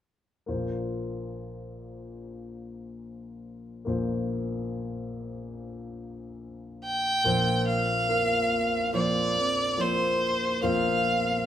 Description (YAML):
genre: pop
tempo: 71 BPM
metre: 4/4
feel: straight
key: unclear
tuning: A4 = 439 Hz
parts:
  - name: dark grand piano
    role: accompaniment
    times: 0.5-11.5 s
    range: Bb1 to C5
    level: -30 LUFS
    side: left 2 dB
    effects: none
  - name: clear violin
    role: melody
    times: 6.8-11.5 s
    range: C5 to G5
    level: -25 LUFS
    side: equal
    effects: none
  - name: picked steel-string acoustic guitar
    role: arpeggios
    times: 7.2-11.5 s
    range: Bb2 to F4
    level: -33 LUFS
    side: right 5 dB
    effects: none
room: moderate large studio reverb, RT60 1.2 s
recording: band playing live in one room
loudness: -24 LUFS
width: side -10 dB against mid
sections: 0.5-7.2 A section; 7.2-11.5 B section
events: none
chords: 0.5 Bbsus2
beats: | 0.49 1.33 2.18 3.02 | 3.87 4.71 5.56 6.40 | 7.25 8.09 8.94 9.78 | 10.63